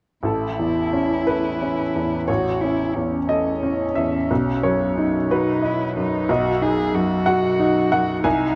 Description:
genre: neoclassical piano and strings.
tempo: 60 BPM (dotted quarters).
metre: 6/8.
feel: rubato.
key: unclear.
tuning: A4 = 440 Hz.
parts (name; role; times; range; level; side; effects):
bright upright piano; accompaniment; 0.2-8.6 s; A1 to G#5; -22 LUFS; equal; none.
dark cello; second line; 0.3-8.6 s; C#4 to G#4; -26 LUFS; equal; none.
room: moderate large studio reverb, RT60 1.1 s.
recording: dark, warm production.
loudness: -21 LUFS.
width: mono.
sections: 0.2-8.6 A section.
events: none.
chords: 0.2 Aadd9; 4.3 B.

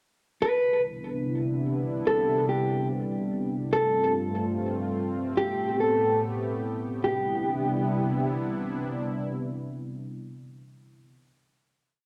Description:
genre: hip hop, atmospheric cloud-rap.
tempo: free time.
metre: none.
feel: none.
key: C major.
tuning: A4 = 440 Hz.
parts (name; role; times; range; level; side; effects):
mellow electric guitar; melody; 0.4-8.2 s; G4 to B4; -29 LUFS; equal; low-pass filter, cassette tape, tape echo.
sweeping resonant pad; sustained chords; 0.8-11.1 s; G2 to G4; -31 LUFS; equal; chorus, cassette tape.
room: moderate spring reverb, RT60 1.3 s.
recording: home recording on cassette.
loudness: -27 LUFS.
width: mono.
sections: 0.4-7.0 breakdown; 7.0-10.4 final chord.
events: none.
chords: 0.4 Cmaj7; 3.7 G7sus4; 5.4 Am7; 7.0 Cmaj7.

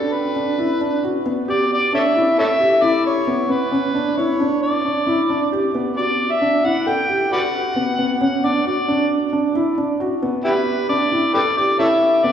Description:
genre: contemporary instrumental, chamber music in an uneven meter.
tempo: 134 BPM.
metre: 5/4.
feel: straight.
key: E dorian.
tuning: A4 = 441 Hz.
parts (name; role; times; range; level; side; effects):
overdriven harmonica; melody; 0.0-12.3 s; E4 to G5; -19 LUFS; equal; none.
felt-muted upright piano; arpeggios; 0.0-12.3 s; B3 to A4; -19 LUFS; equal; none.
room: wet church reverb, RT60 3.5 s.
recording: recorded in a church or concert hall, studio reverb, faint mains hum.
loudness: -16 LUFS.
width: side -8 dB against mid.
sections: 0.0-12.3 A section.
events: none.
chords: 0.0 E7sus2; 1.5 A9sus4 (rootless); 6.0 E7sus2; 10.4 A9sus4.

